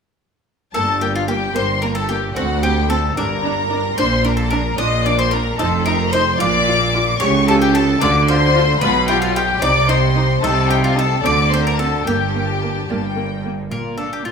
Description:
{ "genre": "classical, baroque-style concerto movement with solo episodes", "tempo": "74 BPM (dotted quarters)", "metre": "6/8", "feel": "straight", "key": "G minor", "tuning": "A4 = 440 Hz", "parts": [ { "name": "bowl-back mandolin", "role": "melody", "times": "0.7-14.3 s", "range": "F4 to Eb5", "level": "-22 LUFS", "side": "left 2 dB", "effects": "none" }, { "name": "warm symphonic violin section", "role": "melody", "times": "0.7-14.3 s", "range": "D5 to Eb6", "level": "-23 LUFS", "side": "left 4 dB", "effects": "none" }, { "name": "lute", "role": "accompaniment", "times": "0.7-14.3 s", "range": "D2 to A4", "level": "-28 LUFS", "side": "right 1 dB", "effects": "none" }, { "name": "rich studio viola section", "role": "accompaniment", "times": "0.7-14.3 s", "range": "Bb3 to G4", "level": "-26 LUFS", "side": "right 1 dB", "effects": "none" }, { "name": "rich studio cello section", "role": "bass", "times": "0.7-14.3 s", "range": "D2 to D3", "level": "-21 LUFS", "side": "right 2 dB", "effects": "none" }, { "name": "rich chamber violin section", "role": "second line", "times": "0.8-14.3 s", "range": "F4 to Eb5", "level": "-23 LUFS", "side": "left 3 dB", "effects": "none" }, { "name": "clear chamber double bass section", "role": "bass", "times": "0.8-13.6 s", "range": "F1 to D2", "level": "-22 LUFS", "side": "right 3 dB", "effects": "none" } ], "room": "wet recital hall reverb, RT60 1.5 s", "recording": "minimal, uncompressed stereo recording", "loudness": "-15 LUFS", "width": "side -6 dB against mid", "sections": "0.8-13.7 A section", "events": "none", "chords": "0.8 Gm; 2.4 D5; 3.2 Gm; 4.0 Bb; 5.6 F5; 6.4 Bb; 7.2 A7/C#; 8.0 Dm; 8.8 G7/B; 9.6 Cm; 10.4 Adim/C; 11.2 Bbmaj9/D; 12.1 Gm; 13.7 Bb" }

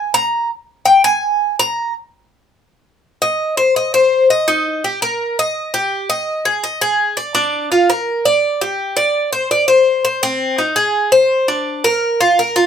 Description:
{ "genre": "latin", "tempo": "167 BPM", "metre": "4/4", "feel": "straight", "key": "unclear", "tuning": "A4 = 440 Hz", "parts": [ { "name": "Cuban tres", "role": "solo", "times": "0.0-12.7 s", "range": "C4 to Bb5", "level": "-13 LUFS", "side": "left 1 dB", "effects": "none" } ], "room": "moderate small room ambience, RT60 0.5 s", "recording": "none", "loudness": "-13 LUFS", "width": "side -8 dB against mid", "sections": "0.0-3.0 A section; 3.0-12.7 B section", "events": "Cuban tres solo 0.0-3.0", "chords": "none" }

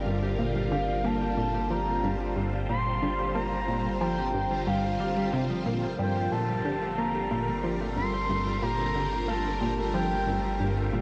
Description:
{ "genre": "ambient, sequencer-driven space music", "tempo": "91 BPM", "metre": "4/4", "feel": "straight", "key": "G minor", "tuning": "A4 = 441 Hz", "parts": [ { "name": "expressive synth lead", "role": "melody", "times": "0.0-10.9 s", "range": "D5 to C6", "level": "-34 LUFS", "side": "equal", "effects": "chorus, tape echo" }, { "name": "phased string machine", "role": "sustained chords", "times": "0.0-11.0 s", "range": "D3 to C5", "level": "-35 LUFS", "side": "equal", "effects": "ensemble chorus, phaser" }, { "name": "concert harp", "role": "arpeggios", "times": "0.0-11.0 s", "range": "F3 to G4", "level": "-38 LUFS", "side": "equal", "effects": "tape echo" }, { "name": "warm sub bass", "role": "bass", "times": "0.0-11.0 s", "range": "G1", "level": "-38 LUFS", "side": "equal", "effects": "none" }, { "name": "plucky analog bass", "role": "riff", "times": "0.1-11.0 s", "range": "G2 to Bb3", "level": "-33 LUFS", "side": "equal", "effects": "analog chorus, tape echo" } ], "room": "wet huge ambient reverb, RT60 7.5 s", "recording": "worn, warbling old tape, cassette tape, warbly pitch drift", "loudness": "-28 LUFS", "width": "mono", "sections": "0.0-11.0 A section", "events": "none", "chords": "0.0 Gm7" }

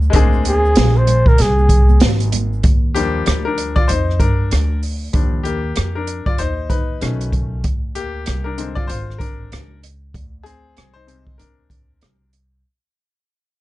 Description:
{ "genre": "hip hop, jazz-hop", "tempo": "96 BPM", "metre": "4/4", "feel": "swing 61% on 16ths", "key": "Eb major", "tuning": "A4 = 441 Hz", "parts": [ { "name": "bright upright piano", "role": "accompaniment", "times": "0.0-12.6 s", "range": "C3 to D5", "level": "-23 LUFS", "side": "left 5 dB", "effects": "none" }, { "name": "upright bass", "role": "bass", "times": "0.0-12.6 s", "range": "Ab1 to G2", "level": "-18 LUFS", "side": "equal", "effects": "none" }, { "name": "tube shaker and congas", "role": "percussion", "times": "0.0-2.6 s", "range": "none", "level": "-30 LUFS", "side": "right 14 dB", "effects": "none" }, { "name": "open jazz drum kit", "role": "drums", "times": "0.1-12.5 s", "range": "hi-hat, kick drum, rim click, snare drum", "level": "-17 LUFS", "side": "equal", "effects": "none" }, { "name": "trumpet with bucket mute", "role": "melody", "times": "0.5-2.0 s", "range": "Ab4 to C5", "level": "-17 LUFS", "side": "equal", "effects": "none" } ], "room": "little or no reverb", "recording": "nothing above 10.6 kHz", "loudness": "-14 LUFS", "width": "side -17 dB against mid", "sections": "0.0-2.6 A section; 2.6-12.6 B section", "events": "fade-out 2.6-12.6; upright piano solo 2.6-12.6", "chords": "0.0 Bb9; 2.6 Ebmaj9; 7.0 B9; 7.6 Bb9" }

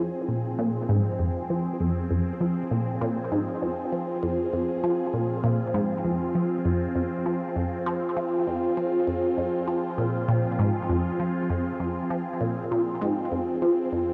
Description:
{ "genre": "ambient, sequencer-driven space music", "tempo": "99 BPM", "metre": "4/4", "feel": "straight", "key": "F minor", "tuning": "A4 = 440 Hz", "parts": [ { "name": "phased analog pad", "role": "sustained chords", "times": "0.0-14.1 s", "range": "F3 to Ab4", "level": "-30 LUFS", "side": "equal", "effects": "phaser, chorus" }, { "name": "resonant blip pluck", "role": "riff", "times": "0.0-14.1 s", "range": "F2 to F3", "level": "-29 LUFS", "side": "equal", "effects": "phaser, tape echo" } ], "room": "wet plate reverb, RT60 2.7 s", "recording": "worn, warbling old tape, cassette tape, warbly pitch drift", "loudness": "-26 LUFS", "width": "mono", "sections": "0.0-14.1 A section", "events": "none", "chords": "0.0 Fm" }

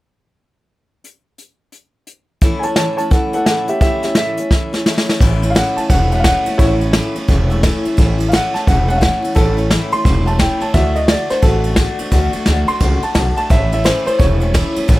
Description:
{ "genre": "rockabilly", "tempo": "173 BPM", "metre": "4/4", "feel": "swing 63% on 8ths", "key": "A major", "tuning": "A4 = 439 Hz", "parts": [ { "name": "jazz brush drum kit", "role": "drums", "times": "1.0-15.0 s", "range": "crash cymbal, hi-hat, kick drum, ride cymbal, snare drum", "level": "-16 LUFS", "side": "equal", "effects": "none" }, { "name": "picked steel-string acoustic guitar", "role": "accompaniment", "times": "2.4-15.0 s", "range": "A2 to F#4", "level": "-21 LUFS", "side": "left 1 dB", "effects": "plate reverb" }, { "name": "dark upright piano", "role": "melody", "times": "2.6-14.5 s", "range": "E4 to C6", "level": "-19 LUFS", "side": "equal", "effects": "plate reverb, tape echo" }, { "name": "upright bass", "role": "bass", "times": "5.2-15.0 s", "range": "E1 to D2", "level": "-17 LUFS", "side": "equal", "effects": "none" } ], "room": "light reverb", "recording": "none", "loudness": "-12 LUFS", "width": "side -18 dB against mid", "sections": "1.0-2.4 A section; 2.4-5.2 B section; 5.2-15.0 C section", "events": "drum fill 4.5-5.2", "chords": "1.0 N.C.; 2.4 A; 10.7 D; 13.5 A" }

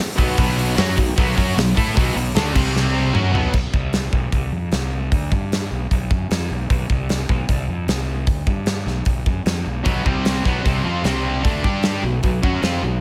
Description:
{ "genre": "hard rock", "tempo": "152 BPM", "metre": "4/4", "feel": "straight", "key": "unclear", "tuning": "A4 = 440 Hz", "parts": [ { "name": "high-gain distorted guitar", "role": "riff", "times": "0.0-3.5, 9.9-13.0 s", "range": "B2 to A4", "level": "-26 LUFS", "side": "equal", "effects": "distortion" }, { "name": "sludgy distorted guitar", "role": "riff", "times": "0.2-3.5, 9.8-13.0 s", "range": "B2 to A4", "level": "-26 LUFS", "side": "equal", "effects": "overdrive" }, { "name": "fuzz fingered electric bass", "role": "bass", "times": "0.2-13.0 s", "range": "B1 to A2", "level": "-25 LUFS", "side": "equal", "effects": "overdrive" }, { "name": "big rock drum kit", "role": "drums", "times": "0.2-12.7 s", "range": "crash cymbal, hi-hat, kick drum, snare drum, toms", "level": "-23 LUFS", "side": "equal", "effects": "none" } ], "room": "light reverb", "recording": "none", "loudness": "-20 LUFS", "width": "mono", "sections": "0.0-3.5 A section; 3.5-13.0 B section", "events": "drum fill 2.7-3.5", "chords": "0.0 Bm; 2.5 C5; 3.1 B5; 3.5 N.C.; 4.1 F5; 4.7 N.C.; 5.7 B5; 6.9 N.C.; 7.3 F5; 7.9 N.C.; 8.9 B5; 10.1 C5; 10.5 B5; 11.0 C5; 11.4 D5; 11.6 G5; 12.0 B5" }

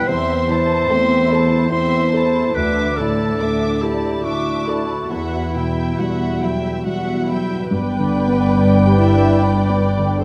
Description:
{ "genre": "cinematic", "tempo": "71 BPM", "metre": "3/4", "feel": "uneven beats, rubato", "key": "unclear", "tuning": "A4 = 439 Hz", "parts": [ { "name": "muted symphonic violin section", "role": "melody", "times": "0.0-10.2 s", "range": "E5 to D6", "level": "-33 LUFS", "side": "equal", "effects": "none" }, { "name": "muted symphonic violin section", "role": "second line", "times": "0.0-10.2 s", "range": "B4 to F#5", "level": "-31 LUFS", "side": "equal", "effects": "none" }, { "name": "warm clarinet", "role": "second line", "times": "0.0-10.2 s", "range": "E4 to D5", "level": "-24 LUFS", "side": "equal", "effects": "none" }, { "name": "muted symphonic viola section", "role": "accompaniment", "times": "0.0-10.2 s", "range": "C4 to D5", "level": "-28 LUFS", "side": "equal", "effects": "none" }, { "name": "warm grand piano", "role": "accompaniment", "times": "0.0-10.2 s", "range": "D2 to B4", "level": "-25 LUFS", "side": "equal", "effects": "none" }, { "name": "concert harp", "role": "arpeggios", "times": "0.0-10.2 s", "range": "G2 to B4", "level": "-30 LUFS", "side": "equal", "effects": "none" }, { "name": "muted symphonic cello section", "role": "bass", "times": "0.1-10.2 s", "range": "D2 to G2", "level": "-24 LUFS", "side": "equal", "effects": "none" }, { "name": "large flute ensemble", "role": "second line", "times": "7.7-10.2 s", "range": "G5", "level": "-30 LUFS", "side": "equal", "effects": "none" }, { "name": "warm French horn section", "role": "sustained chords", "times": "7.7-10.2 s", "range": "B3 to E4", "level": "-23 LUFS", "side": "equal", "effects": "none" }, { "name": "muted symphonic double bass section", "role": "bass", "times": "7.7-10.2 s", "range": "G1", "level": "-22 LUFS", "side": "equal", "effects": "none" } ], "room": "light reverb", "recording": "close, detailed microphones", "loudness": "-18 LUFS", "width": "mono", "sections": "0.0-7.7 A section; 7.7-10.2 B section", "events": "none", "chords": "0.1 Am/E; 2.6 Dsus2; 5.1 Emadd9; 7.7 G" }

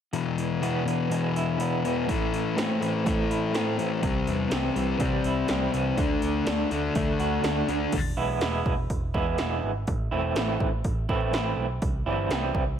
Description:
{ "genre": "quiet-loud alternative rock", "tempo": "123 BPM", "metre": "4/4", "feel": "straight", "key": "unclear", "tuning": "A4 = 440 Hz", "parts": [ { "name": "electric guitar through a small old amp", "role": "arpeggios", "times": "0.1-12.6 s", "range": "E2 to F#4", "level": "-29 LUFS", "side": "right 4 dB", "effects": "tremolo" }, { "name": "thick fuzz guitar", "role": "riff", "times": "0.1-7.9 s", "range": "E2 to D4", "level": "-26 LUFS", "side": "left 6 dB", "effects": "distortion" }, { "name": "80s electronic pad drums", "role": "drums", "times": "0.1-12.7 s", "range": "crash cymbal, hi-hat, kick drum, snare drum", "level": "-30 LUFS", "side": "right 1 dB", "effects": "none" }, { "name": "overdriven picked electric bass", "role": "bass", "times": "4.0-12.7 s", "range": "E1 to C3", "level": "-31 LUFS", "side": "right 1 dB", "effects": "none" } ], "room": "light reverb, digital ambience", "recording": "none", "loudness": "-24 LUFS", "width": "side -9 dB against mid", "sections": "0.1-7.9 A section; 7.9-12.8 B section", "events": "none", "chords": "0.1 E; 2.1 Am; 4.0 C; 6.0 D; 7.9 E; 9.9 Am; 11.8 C" }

